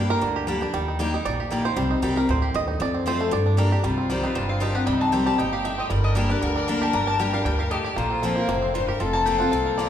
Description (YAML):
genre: bluegrass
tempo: 232 BPM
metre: 4/4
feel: swing 54% on 8ths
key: unclear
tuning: A4 = 440 Hz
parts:
  - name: bluegrass banjo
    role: melody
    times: 0.0-9.9 s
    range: Eb3 to Eb5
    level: -28 LUFS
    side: right 5 dB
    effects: none
  - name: picked steel-string acoustic guitar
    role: accompaniment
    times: 0.0-9.9 s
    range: F2 to G4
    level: -25 LUFS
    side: left 2 dB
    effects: none
  - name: upright bass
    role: bass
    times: 0.0-9.9 s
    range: F1 to G2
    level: -27 LUFS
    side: equal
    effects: none
  - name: warm fiddle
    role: second line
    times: 3.8-9.9 s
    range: Eb4 to C5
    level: -28 LUFS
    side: left 4 dB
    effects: none
  - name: mandolin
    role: melody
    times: 4.1-9.9 s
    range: Bb4 to Bb5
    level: -28 LUFS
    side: left 4 dB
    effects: none
room: wet recital hall reverb, RT60 1.4 s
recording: recorded in a church or concert hall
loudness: -21 LUFS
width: side -10 dB against mid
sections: 0.0-3.8 A section; 3.8-9.9 A section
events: five-string banjo solo 0.0-3.8; mandolin solo 3.8-9.9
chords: 0.0 Gm; 0.7 Eb; 1.8 Cm; 2.8 F; 3.3 Gm; 3.8 Cm; 5.9 Gm; 8.0 Bbsus2; 9.0 Fsus4